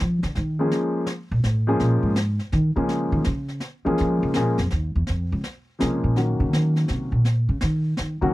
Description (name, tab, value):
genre	jazz piano trio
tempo	165 BPM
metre	3/4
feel	swing 65% on 8ths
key	Bb minor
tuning	A4 = 439 Hz
part	upright bass	bass	0.0-8.3 s	Db2 to F3	-22 LUFS	equal	none
part	snare drum and brushed snare drum	drums	0.2-8.3 s	none	-31 LUFS	equal	none
part	warm grand piano	melody	0.6-8.3 s	Eb3 to Ab4	-23 LUFS	left 1 dB	none
room	little or no reverb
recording	dry, close 1970s-style studio recording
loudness	-20 LUFS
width	side -18 dB against mid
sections	0.0-1.8 A section; 1.8-8.3 A section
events	upright bass solo 0.0-8.3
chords	0.0 Fm7; 0.7 Bbm7; 1.4 F; 1.8 Bbm7; 6.2 Ebm7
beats	0.00 0.36 | 0.72 1.08 1.45 | 1.81 2.17 2.53 | 2.90 3.26 3.62 | 3.99 4.35 4.71 | 5.08 5.44 5.80 | 6.16 6.53 6.89 | 7.25 7.62 7.98